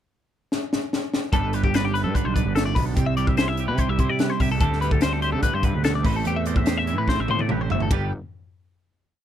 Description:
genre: math rock and midwest emo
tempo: 146 BPM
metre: 4/4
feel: straight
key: G major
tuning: A4 = 440 Hz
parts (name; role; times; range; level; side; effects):
- crisp fusion drum kit; drums; 0.5-8.0 s; hi-hat, kick drum, ride cymbal, snare drum, toms; -24 LUFS; left 1 dB; none
- twelve-string electric guitar; accompaniment; 1.3-8.1 s; G2 to C5; -28 LUFS; right 15 dB; none
- twelve-string electric guitar; arpeggios; 1.3-8.1 s; G4 to E5; -27 LUFS; left 6 dB; phaser
- fuzz picked electric bass; bass; 1.3-8.1 s; G1 to D3; -25 LUFS; equal; overdrive
room: little or no reverb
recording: none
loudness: -20 LUFS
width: side -10 dB against mid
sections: 0.0-1.3 pickup bar; 1.3-7.9 A section; 7.9-9.2 final chord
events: drum fill 0.5-1.3, 7.1-7.9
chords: 0.0 N.C.; 1.3 G; 3.0 Cmaj7; 4.6 D7sus4; 6.0 Am7; 7.9 G

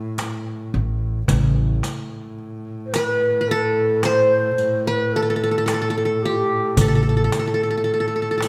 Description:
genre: Turkish makam ensemble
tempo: 109 BPM (eighths)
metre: 10/8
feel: straight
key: unclear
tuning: A4 = 440 Hz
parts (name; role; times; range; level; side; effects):
- rich double bass; drone; 0.0-8.5 s; A2; -30 LUFS; equal; none
- darbuka; percussion; 0.2-8.5 s; none; -25 LUFS; equal; none
- riq; percussion; 0.2-8.5 s; none; -34 LUFS; equal; none
- upright bass; bass; 0.7-7.3 s; A1; -23 LUFS; equal; none
- breathy mellow low ney; second line; 2.9-8.5 s; F4 to C5; -25 LUFS; equal; none
- qanun; melody; 3.0-8.5 s; G4 to C5; -23 LUFS; equal; none
room: moderate recital hall reverb, RT60 1.6 s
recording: none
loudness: -20 LUFS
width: mono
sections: 0.0-8.5 A section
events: none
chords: none

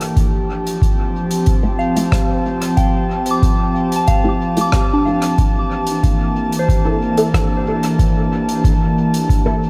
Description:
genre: ambient dub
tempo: 92 BPM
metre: 4/4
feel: straight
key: unclear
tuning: A4 = 436 Hz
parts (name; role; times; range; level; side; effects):
- airy breathy pad; sustained chords; 0.0-9.7 s; E3 to A5; -21 LUFS; equal; chorus
- soft synth bell; arpeggios; 0.0-9.7 s; D4 to D6; -24 LUFS; equal; chorus, phaser, tape echo
- soft-mallet drum kit; drums; 0.0-9.4 s; hi-hat, rim click; -31 LUFS; equal; dub echo
- electronic kick drum; drums; 0.2-9.4 s; none; -19 LUFS; equal; none
- filtered dub chord stab; stabs; 1.6-9.6 s; A3 to A4; -25 LUFS; equal; phaser, ensemble chorus, dub echo
room: studio reverb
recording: echo-heavy mix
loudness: -16 LUFS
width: mono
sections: 0.0-9.7 A section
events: none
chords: 0.2 Fadd9; 5.4 Gm69

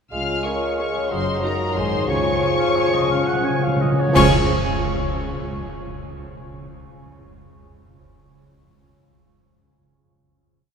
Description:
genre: classical, orchestral ballroom waltz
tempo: 163-198 BPM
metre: 3/4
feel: rubato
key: Db major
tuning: A4 = 440 Hz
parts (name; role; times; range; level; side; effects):
- muted studio violin section; melody; 0.1-4.3 s; Bb5 to F6; -27 LUFS; left 4 dB; none
- concert flute; second line; 0.1-4.3 s; Ab5 to Bb5; -32 LUFS; equal; none
- dark clarinet; second line; 0.1-4.3 s; F4 to Ab4; -33 LUFS; right 2 dB; none
- mellow oboe; second line; 0.1-4.3 s; Db5 to Ab5; -29 LUFS; right 1 dB; none
- muted studio violin section; second line; 0.1-4.3 s; Bb4 to F5; -30 LUFS; left 3 dB; none
- warm bassoon; accompaniment; 0.1-4.3 s; F3 to Ab3; -27 LUFS; right 2 dB; none
- dark French horn section; sustained chords; 0.1-4.3 s; Ab3 to Bb4; -28 LUFS; left 4 dB; none
- concert harp; arpeggios; 0.1-5.2 s; Gb2 to Ab5; -30 LUFS; left 4 dB; none
- muted studio cello section; bass; 0.1-4.3 s; Db2 to Db3; -29 LUFS; right 3 dB; none
- muted studio double bass section; bass; 0.1-4.3 s; Gb1 to Db2; -29 LUFS; right 3 dB; none
- muted studio viola section; accompaniment; 0.5-4.3 s; Db4 to Ab4; -31 LUFS; right 2 dB; none
- cymbal swell, clash cymbals and concert bass drum; percussion; 2.1-4.8 s; none; -28 LUFS; right 1 dB; none
- timpani; percussion; 2.1-4.3 s; Db3; -25 LUFS; equal; none
room: wet cathedral reverb, RT60 5.4 s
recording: recorded in a church or concert hall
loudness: -18 LUFS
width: side -6 dB against mid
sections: 0.1-4.2 A section; 4.2-5.2 final chord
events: slowing down 1.6-4.2; timpani fill 2.1-4.2; band accent 4.2-4.5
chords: 0.1 Db; 1.1 Ebm/Gb; 1.8 Ab7; 2.1 Db

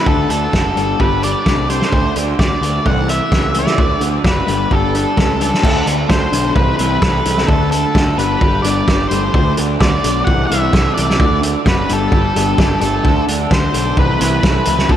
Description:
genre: indie rock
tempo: 130 BPM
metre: 4/4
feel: straight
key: D mixolydian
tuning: A4 = 437 Hz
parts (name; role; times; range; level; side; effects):
- octave-fuzz lead guitar; melody; 0.0-15.0 s; A4 to F#5; -19 LUFS; left 1 dB; distortion, tape echo
- crunchy overdriven guitar; riff; 0.0-15.0 s; C3 to D5; -22 LUFS; right 7 dB; lush chorus
- electric guitar through a small old amp; riff; 0.0-15.0 s; C3 to D4; -22 LUFS; left 6 dB; spring reverb
- fuzz picked electric bass; bass; 0.1-15.0 s; F#1 to D2; -19 LUFS; equal; overdrive
- loose indie drum kit; drums; 0.1-15.0 s; crash cymbal, hi-hat, kick drum, snare drum; -16 LUFS; equal; none
- ensemble organ-string; sustained chords; 13.0-15.0 s; C4 to E6; -30 LUFS; left 1 dB; none
room: moderate huge ambient reverb, RT60 4.2 s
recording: dreamy mix soaked in reverb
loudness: -12 LUFS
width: side -10 dB against mid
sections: 0.0-5.6 A section; 5.6-15.0 B section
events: none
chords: 0.1 D; 0.8 Gadd9; 1.9 D; 2.9 Am/C; 3.8 D; 4.5 Gadd9; 5.6 D; 6.6 Amadd9/C; 7.5 D; 8.2 Gadd9; 9.3 D; 10.3 Am/C; 11.2 D; 11.9 Gadd9; 13.0 Dadd9; 14.0 Amadd9/C

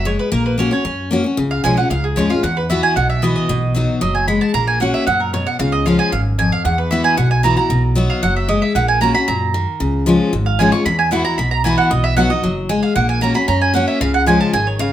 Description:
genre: bluegrass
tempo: 228 BPM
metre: 4/4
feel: straight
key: B major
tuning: A4 = 440 Hz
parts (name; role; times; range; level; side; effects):
- picked steel-string acoustic guitar; accompaniment; 0.0-14.9 s; E2 to F#4; -18 LUFS; left 3 dB; none
- mandolin; stabs; 0.0-14.9 s; G#4 to C#6; -18 LUFS; right 4 dB; none
- upright bass; bass; 0.0-14.9 s; F#1 to F#2; -20 LUFS; right 1 dB; none
room: moderate studio reverb, RT60 0.8 s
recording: none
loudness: -14 LUFS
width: side -11 dB against mid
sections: 0.0-14.9 A section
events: mandolin solo 0.0-14.9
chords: 0.3 F#/A#; 1.4 C#; 2.4 Esus2; 3.5 B; 4.5 F#/A#; 5.6 C#; 6.6 Esus2; 7.7 B; 8.8 F#/A#; 9.8 C#; 10.9 Esus2; 11.9 B; 13.0 F#/A#; 14.0 C#

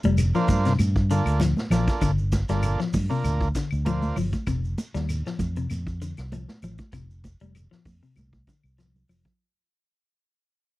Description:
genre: afrobeat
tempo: 98 BPM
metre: 4/4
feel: swing 53% on 16ths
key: unclear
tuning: A4 = 436 Hz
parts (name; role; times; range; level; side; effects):
- fingered electric bass; bass; 0.0-9.2 s; F1 to G2; -25 LUFS; equal; none
- vintage drum kit; drums; 0.0-9.4 s; hi-hat, kick drum, snare drum; -30 LUFS; equal; none
- congas; percussion; 0.0-9.4 s; none; -29 LUFS; right 2 dB; none
- shekere; percussion; 0.0-9.4 s; none; -35 LUFS; right 1 dB; none
- clean electric guitar; arpeggios; 0.1-9.3 s; C3 to G3; -28 LUFS; left 4 dB; spring reverb
- claves; percussion; 0.2-9.3 s; none; -40 LUFS; left 7 dB; none
- combo organ; accompaniment; 0.3-4.2 s; Bb3 to C5; -28 LUFS; right 4 dB; none
room: little or no reverb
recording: dry, close 1970s-style studio recording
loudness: -22 LUFS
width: side -18 dB against mid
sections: 0.0-9.4 A section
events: fade-out 0.0-9.4; drum fill 8.2-9.4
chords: 0.0 Gm7; 4.5 F5

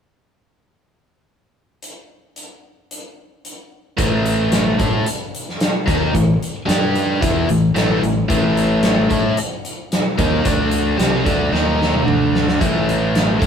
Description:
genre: classic rock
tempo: 111 BPM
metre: 4/4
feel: straight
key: A minor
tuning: A4 = 439 Hz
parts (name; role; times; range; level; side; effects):
- big rock drum kit; drums; 1.8-13.5 s; hi-hat, kick drum, snare drum, toms; -20 LUFS; equal; none
- biting overdriven guitar; riff; 4.0-13.5 s; A2 to A4; -17 LUFS; equal; none
- growling fingered electric bass; bass; 4.0-13.5 s; A1 to A2; -23 LUFS; equal; overdrive
room: moderate studio reverb, RT60 0.8 s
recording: band playing live in one room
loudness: -15 LUFS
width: side -7 dB against mid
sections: 1.8-4.0 A section; 4.0-13.5 B section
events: drum fill 11.5-12.6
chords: 1.8 N.C.; 4.0 A5; 6.7 G5; 7.2 A5; 10.4 D5; 11.0 Am; 11.5 D#5; 12.1 D5; 12.6 A5

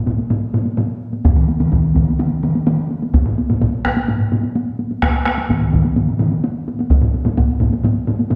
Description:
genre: japanese traditional, taiko drum ensemble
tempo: 127 BPM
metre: 4/4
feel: straight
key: none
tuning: none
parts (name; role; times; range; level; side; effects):
- solo taiko drums; percussion; 0.1-8.4 s; none; -22 LUFS; equal; none
- taiko ensemble; percussion; 0.1-8.4 s; none; -23 LUFS; equal; none
- taiko ensemble; percussion; 0.1-7.7 s; none; -21 LUFS; equal; none
- solo taiko drums; percussion; 1.4-6.3 s; none; -21 LUFS; equal; none
room: wet recital hall reverb, RT60 1.4 s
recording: heard from further back in the room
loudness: -17 LUFS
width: mono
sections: 0.0-8.4 A section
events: none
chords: none

